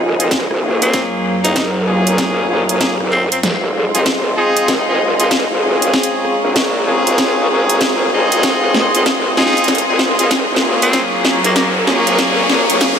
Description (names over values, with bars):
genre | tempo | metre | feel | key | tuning
glitch hop | 96 BPM | 4/4 | swing 64% on 16ths | F phrygian | A4 = 440 Hz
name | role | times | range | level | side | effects
dark analog pad | sustained chords | 0.0-13.0 s | Gb3 to Eb6 | -20 LUFS | right 1 dB | chorus, sidechain pumping
clear horn section | stabs | 0.0-13.0 s | Bb3 to Ab4 | -17 LUFS | left 1 dB | sidechain pumping, low-pass filter, ping-pong delay
growl bass | bass | 0.0-13.0 s | Eb1 to Db2 | -19 LUFS | equal | chorus, overdrive, high-pass filter
drum and bass drum kit | drums | 0.2-13.0 s | hi-hat, rim click, snare drum | -18 LUFS | equal | overdrive, studio reverb
electronic kick drum | drums | 0.3-13.0 s | none | -21 LUFS | equal | overdrive, high-pass filter on kick, studio reverb
growling tenor saxophone | melody | 0.8-3.4, 10.8-11.7 s | Bb3 to Eb4 | -21 LUFS | equal | ping-pong delay
riser | sound effects | 9.9-13.0 s | none | -24 LUFS | left 2 dB | none
room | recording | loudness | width
wet huge ambient reverb, RT60 6.6 s | dreamy mix soaked in reverb, high-pass filter | -12 LUFS | side -7 dB against mid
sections
0.0-13.0 A section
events
build-up 0.0-13.0; drum fill 0.0-13.0; riser 9.9-13.0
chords
0.0 Fm7; 0.9 Gbmaj7; 3.4 Fm7; 5.9 Bbm7; 8.4 Fm7; 10.9 Gbmaj7